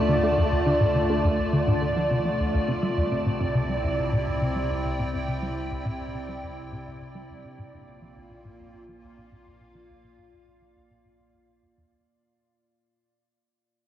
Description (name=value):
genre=ambient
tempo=104 BPM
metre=4/4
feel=straight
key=unclear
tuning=A4 = 440 Hz
part: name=evolving wavetable pad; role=sustained chords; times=0.0-12.1 s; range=Bb2 to A5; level=-28 LUFS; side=equal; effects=chorus, built-in reverb
part: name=warm sub bass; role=bass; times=0.0-12.0 s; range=Bb1 to D2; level=-33 LUFS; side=equal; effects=none
part: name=wind-like tuned noise texture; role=texture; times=0.0-12.1 s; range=D5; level=-32 LUFS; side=right 2 dB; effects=built-in reverb
part: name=soft round pluck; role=arpeggios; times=0.1-12.1 s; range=C4 to D6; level=-37 LUFS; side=left 1 dB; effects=chorus, auto-pan, tape echo
part: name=tight sequenced synth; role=riff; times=0.1-12.0 s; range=C2 to A3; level=-26 LUFS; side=equal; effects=chorus, tape echo
room=wet lush hall reverb, RT60 2.5 s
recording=home recording on cassette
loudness=-23 LUFS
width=side -11 dB against mid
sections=0.0-12.1 A section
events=fade-out on synth arpeggio sound 0.0-12.1; fade-out 0.0-12.1; filter sweep on synth arpeggio sound 0.0-12.1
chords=0.0 Dm; 2.8 Cadd9; 7.4 Bb